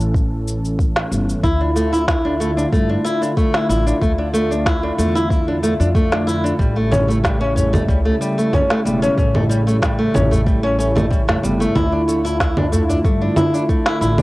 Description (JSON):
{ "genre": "organic downtempo", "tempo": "93 BPM", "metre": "4/4", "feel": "straight", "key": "unclear", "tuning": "A4 = 442 Hz", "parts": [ { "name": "warm analog pad", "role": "sustained chords", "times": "0.0-14.2 s", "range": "C#3 to A4", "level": "-23 LUFS", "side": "right 1 dB", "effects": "chorus, sidechain pumping, cassette tape" }, { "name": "upright bass", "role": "bass", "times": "0.0-14.2 s", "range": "E1 to G2", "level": "-21 LUFS", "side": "equal", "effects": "sidechain pumping" }, { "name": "electronic shaker, snare drum and congas", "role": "drums", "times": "0.0-14.2 s", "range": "none", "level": "-22 LUFS", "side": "equal", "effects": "overdrive, cassette tape" }, { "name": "electronic kick drum", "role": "drums", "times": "0.1-13.8 s", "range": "none", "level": "-19 LUFS", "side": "equal", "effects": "overdrive, cassette tape" }, { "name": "flamenco guitar", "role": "arpeggios", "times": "1.4-14.2 s", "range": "G3 to E4", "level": "-19 LUFS", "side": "equal", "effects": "vintage 12-bit sampler grit, cassette tape, tape echo" }, { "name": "udu", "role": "percussion", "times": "7.6-13.0 s", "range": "none", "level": "-22 LUFS", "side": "equal", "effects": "none" } ], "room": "light reverb, studio reverb", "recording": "home recording on cassette", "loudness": "-15 LUFS", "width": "side -19 dB against mid", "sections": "0.0-14.2 A section", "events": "none", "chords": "0.0 A7; 1.4 Dmadd9; 6.6 A7; 11.8 Dmadd9" }